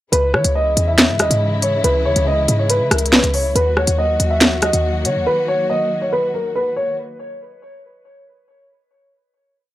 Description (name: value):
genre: hip hop, drill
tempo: 140 BPM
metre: 4/4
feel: half-time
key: Eb phrygian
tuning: A4 = 440 Hz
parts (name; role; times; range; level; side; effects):
- dark grand piano; melody; 0.1-6.9 s; Bb4 to Fb5; -18 LUFS; equal; tape echo
- warm symphonic string section; sustained chords; 0.1-6.9 s; Db3 to Gb4; -25 LUFS; left 2 dB; none
- short 808-style bass; bass; 0.1-5.3 s; Cb2 to Fb3; -19 LUFS; equal; none
- drill drum kit; drums; 0.1-5.2 s; handclaps, hi-hat, rim click, snare drum; -15 LUFS; equal; none
room: small room reverb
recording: dry, gritty hardware recording, transformer saturation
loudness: -14 LUFS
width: side -15 dB against mid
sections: 0.1-7.0 hook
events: none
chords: 0.1 Dbm; 3.6 Ebm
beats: | 0.13 0.55 0.98 1.41 | 1.84 2.27 2.70 3.13 | 3.55 3.98 4.41 4.84 | 5.27 5.70 6.13 6.55